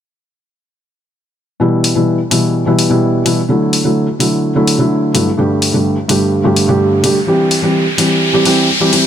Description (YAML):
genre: EDM, festival progressive house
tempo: 127 BPM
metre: 4/4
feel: straight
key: E minor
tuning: A4 = 440 Hz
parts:
  - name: felt-muted upright piano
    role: accompaniment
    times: 1.6-9.1 s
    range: G2 to G4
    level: -11 LUFS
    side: equal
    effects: digital delay
  - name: electronic hi-hat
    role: drums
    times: 1.8-9.0 s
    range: none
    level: -17 LUFS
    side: left 2 dB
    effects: small room ambience
  - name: riser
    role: sound effects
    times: 6.9-9.1 s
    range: none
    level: -18 LUFS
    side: left 1 dB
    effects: none
room: light reverb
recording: none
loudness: -11 LUFS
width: side -9 dB against mid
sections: 1.6-9.1 A section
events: riser 6.9-9.1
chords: 1.6 Em; 3.5 Dadd9; 5.4 Gsus2; 7.3 C